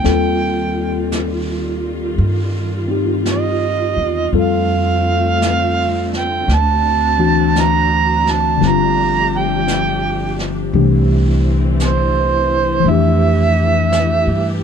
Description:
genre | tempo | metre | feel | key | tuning
jazz ballad | 56 BPM | 4/4 | swing 66% on 8ths | F major | A4 = 440 Hz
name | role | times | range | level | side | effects
overdriven harmonica | melody | 0.0-14.6 s | C5 to Bb5 | -17 LUFS | right 6 dB | none
tine electric piano | accompaniment | 0.0-14.6 s | D3 to A4 | -18 LUFS | moving between left 9 dB and equal | overdrive, auto-pan
warm symphonic string section | sustained chords | 0.0-14.6 s | D3 to G4 | -24 LUFS | right 1 dB | none
upright bass | bass | 0.0-14.6 s | G1 to G2 | -19 LUFS | equal | none
jazz brush drum kit | drums | 0.0-14.6 s | brushed snare drum, hi-hat, snare drum | -28 LUFS | right 2 dB | none
room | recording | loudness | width
little or no reverb | dark, warm production | -13 LUFS | side -7 dB against mid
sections
0.0-14.6 A section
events
none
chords
0.0 Ebadd9; 4.3 F6; 6.5 D7; 8.6 Gsus2; 10.7 Cadd9; 12.9 Fmaj9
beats
| 0.04 1.11 2.18 3.26 | 4.34 5.41 6.48 7.55 | 8.61 9.68 10.74 11.80 | 12.86 13.93

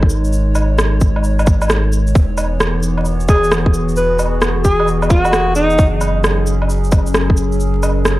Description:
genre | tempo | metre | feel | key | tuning
future garage | 132 BPM | 4/4 | swing 65% on 16ths | unclear | A4 = 440 Hz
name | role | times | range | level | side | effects
warbly tape-like pad | sustained chords | 0.0-8.2 s | E3 to C#5 | -21 LUFS | equal | chorus, built-in reverb, sidechain pumping
warm sub bass | bass | 0.0-8.2 s | E1 to G#1 | -17 LUFS | equal | tube saturation, sidechain pumping
electronic kick drum | drums | 0.0-7.4 s | none | -12 LUFS | equal | overdrive
electronic cabasa, shaker, woodblock and rim click | drums | 0.1-8.2 s | none | -20 LUFS | equal | overdrive
mellow alto saxophone | melody | 3.3-5.8 s | D#4 to B4 | -17 LUFS | equal | analog delay
room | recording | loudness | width
light reverb | dry, gritty hardware recording, vinyl crackle | -12 LUFS | side -17 dB against mid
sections
0.0-8.2 A section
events
none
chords
0.0 G#5; 2.1 Emaj7; 5.8 F#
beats
| 0.33 0.79 1.24 1.70 | 2.15 2.60 3.06 3.51 | 3.97 4.42 4.88 5.33 | 5.79 6.24 6.70 7.15 | 7.61 8.06

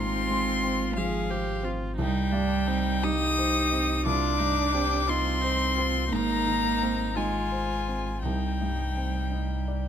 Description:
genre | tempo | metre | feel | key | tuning
neoclassical piano and strings | 58 BPM (dotted quarters) | 6/8 | rubato | C minor | A4 = 440 Hz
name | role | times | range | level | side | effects
rich violin | melody | 0.0-9.9 s | F5 to Eb6 | -29 LUFS | left 6 dB | none
clear cello | second line | 0.0-9.9 s | F3 to Eb4 | -30 LUFS | right 6 dB | none
felt-muted upright piano | accompaniment | 0.0-9.9 s | C2 to D5 | -33 LUFS | left 1 dB | none
rich viola | accompaniment | 0.0-9.8 s | D4 to Ab4 | -35 LUFS | right 1 dB | none
punchy sub bass | bass | 0.0-9.9 s | Ab1 to C2 | -31 LUFS | equal | none
room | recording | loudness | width
light reverb | close, detailed microphones | -24 LUFS | side -8 dB against mid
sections
0.0-9.9 A section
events
none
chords
0.0 Fm/Ab; 2.0 Cm; 6.1 Ab; 8.2 Cmadd9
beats
0.96 | 1.98 3.03 | 4.06 5.09 | 6.12 7.16 | 8.23 9.31

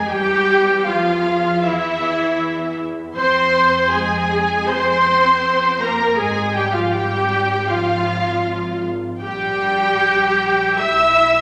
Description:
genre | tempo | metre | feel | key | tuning
classical, slow romantic movement for string orchestra | 79 BPM | 4/4 | rubato | F minor | A4 = 439 Hz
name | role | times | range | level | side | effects
warm symphonic violin section | melody | 0.0-11.4 s | E5 to E6 | -24 LUFS | equal | none
warm symphonic violin section | second line | 0.0-11.4 s | E5 to E6 | -27 LUFS | equal | none
rich symphonic viola section | accompaniment | 0.0-11.4 s | E4 to E5 | -20 LUFS | equal | none
rich symphonic cello section | bass | 0.0-11.4 s | E3 to E4 | -30 LUFS | equal | none
rich symphonic double bass section | bass | 0.0-11.4 s | Ab1 to F2 | -31 LUFS | equal | none
room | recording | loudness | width
wet recital hall reverb, RT60 1.3 s | none | -18 LUFS | mono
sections
0.0-11.4 A section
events
none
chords
0.1 Em; 3.2 Fm; 6.2 Fm/Ab; 9.2 Gm/Bb; 10.8 Bsus4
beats
| 0.10 0.86 1.63 2.39 | 3.17 3.94 4.69 5.45 | 6.19 6.94 7.69 8.45 | 9.22 9.99 10.80

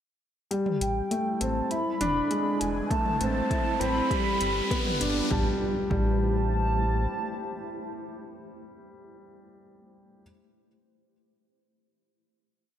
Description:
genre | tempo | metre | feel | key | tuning
piano and strings electronica | 100 BPM | 4/4 | straight | A minor | A4 = 442 Hz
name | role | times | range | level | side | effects
granular cloud pad | sustained chords | 1.0-8.5 s | G3 to C5 | -36 LUFS | equal | built-in reverb, sidechain pumping
warm upright piano | riff | 0.5-10.2 s | G3 to E4 | -29 LUFS | left 1 dB | none
deep house drum kit | drums | 0.5-5.1 s | hi-hat, toms | -35 LUFS | equal | overdrive
riser and impact | sound effects | 2.4-9.1 s | none | -36 LUFS | equal | none
warm velvety synth lead | melody | 0.8-8.5 s | G5 to B5 | -31 LUFS | right 1 dB | chorus, digital delay
round analog bass | bass | 0.8-7.1 s | E1 to A1 | -29 LUFS | equal | sidechain pumping
electronic kick drum | drums | 2.9-6.1 s | none | -30 LUFS | equal | overdrive
room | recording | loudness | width
moderate lush hall reverb, RT60 1.7 s | none | -25 LUFS | side -10 dB against mid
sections
0.5-5.3 build; 5.3-7.7 final chord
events
build-up 0.5-5.3; riser 2.4-5.3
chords
0.5 Am7; 1.7 E7; 2.9 Am7; 4.1 G7; 5.3 Am7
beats
| 0.51 1.11 1.71 2.31 | 2.91 3.51 4.11 4.71 | 5.31 5.91 6.51 7.11

